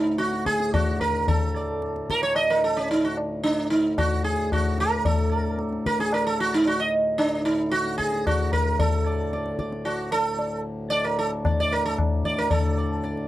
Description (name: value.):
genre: indian classical, Hindustani.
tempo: 112 BPM.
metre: 7/4.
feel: straight.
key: D raga puriya dhanashri.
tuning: A4 = 441 Hz.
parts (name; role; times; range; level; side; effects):
sitar; melody; 0.0-13.3 s; C#4 to Eb5; -24 LUFS; right 2 dB; none.
pedal harmonium; drone; 0.0-13.3 s; D2 to A2; -31 LUFS; left 1 dB; none.
tabla; percussion; 0.2-13.3 s; none; -26 LUFS; left 2 dB; none.
room: moderate studio reverb, RT60 0.5 s.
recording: dark, warm production.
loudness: -22 LUFS.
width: side -14 dB against mid.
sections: 0.0-12.5 A section.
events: none.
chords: none.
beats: 0.20 0.74 | 1.28 1.82 2.36 2.90 3.44 3.97 4.51 | 5.05 5.58 6.12 6.65 7.19 7.72 8.25 | 8.79 9.32 9.85 10.38 10.91 11.44 11.97 | 12.50 13.03.